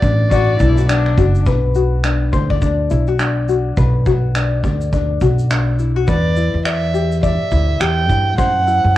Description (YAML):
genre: acoustic pop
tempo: 104 BPM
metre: 4/4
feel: swing 60% on 16ths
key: unclear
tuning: A4 = 440 Hz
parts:
  - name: dark violin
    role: melody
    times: 0.0-1.1, 6.1-9.0 s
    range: D5 to G5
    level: -19 LUFS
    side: right 3 dB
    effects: cassette tape
  - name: tenor ukulele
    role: accompaniment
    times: 0.0-9.0 s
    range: D4 to D5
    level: -21 LUFS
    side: left 8 dB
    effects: cassette tape
  - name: upright bass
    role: bass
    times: 0.0-9.0 s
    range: F#1 to G2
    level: -16 LUFS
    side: equal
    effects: none
  - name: soft brush drum kit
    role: drums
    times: 0.0-8.8 s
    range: finger snaps, kick drum, shaker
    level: -21 LUFS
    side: right 1 dB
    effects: cassette tape
  - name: warm cello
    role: second line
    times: 0.3-1.4 s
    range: D4 to F#4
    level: -21 LUFS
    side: left 6 dB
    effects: cassette tape
room: small room ambience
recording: home recording on cassette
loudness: -13 LUFS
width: side -14 dB against mid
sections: 0.0-1.5 A section; 1.5-6.1 B section; 6.1-9.0 C section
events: none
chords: 0.0 Bm; 6.1 Em7; 8.4 F#7(b5, no3)